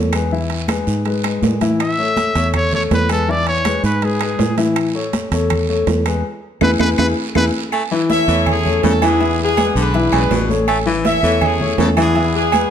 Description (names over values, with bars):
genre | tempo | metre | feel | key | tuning
latin, salsa | 162 BPM | 4/4 | straight | A major | A4 = 440 Hz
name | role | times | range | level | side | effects
warm upright piano | accompaniment | 0.0-12.7 s | E3 to E5 | -20 LUFS | left 4 dB | none
fingered electric bass | bass | 0.0-12.7 s | A1 to A2 | -20 LUFS | right 1 dB | none
claves | percussion | 0.1-12.7 s | none | -32 LUFS | left 5 dB | none
congas | percussion | 0.1-12.7 s | none | -24 LUFS | equal | none
guiro | percussion | 0.1-12.7 s | none | -32 LUFS | right 8 dB | none
timbales and agogo bells | percussion | 0.1-12.7 s | none | -23 LUFS | right 10 dB | none
bright trumpet | melody | 1.8-7.5 s | G#4 to E5 | -20 LUFS | equal | none
edgy baritone saxophone | second line | 7.7-12.4 s | B2 to A3 | -24 LUFS | left 3 dB | none
clear horn section | melody | 8.1-12.7 s | B3 to E5 | -19 LUFS | equal | none
room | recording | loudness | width
wet large studio reverb, RT60 1.3 s | none | -14 LUFS | side -8 dB against mid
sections
0.0-7.7 A section; 7.7-12.7 B section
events
drum fill 6.2-7.7; band accent 6.2-7.7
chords
0.3 E; 1.8 A; 3.3 E; 4.8 A; 6.2 E; 7.7 A; 9.2 E7; 10.7 A; 12.2 E7